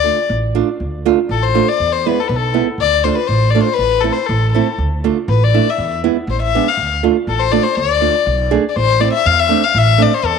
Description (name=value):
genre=klezmer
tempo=121 BPM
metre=2/4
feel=straight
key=D dorian sharp4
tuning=A4 = 443 Hz
part: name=rich violin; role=melody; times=0.0-10.4 s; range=A4 to F5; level=-16 LUFS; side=left 10 dB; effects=none
part: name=nylon-string guitar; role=accompaniment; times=0.0-10.1 s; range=G#3 to G#4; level=-18 LUFS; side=right 12 dB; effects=none
part: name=upright bass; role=bass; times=0.0-10.4 s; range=A1 to E2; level=-18 LUFS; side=right 1 dB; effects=none
room=moderate spring reverb, RT60 1.9 s, studio reverb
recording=1960s-style stereo with parts hard left and right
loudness=-13 LUFS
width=side -6 dB against mid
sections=0.8-8.8 A section; 8.8-10.4 B section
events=none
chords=0.0 Dm; 1.8 E; 2.8 Dm; 3.8 Am; 4.8 Dm; 5.8 E; 6.8 Dm; 8.8 Am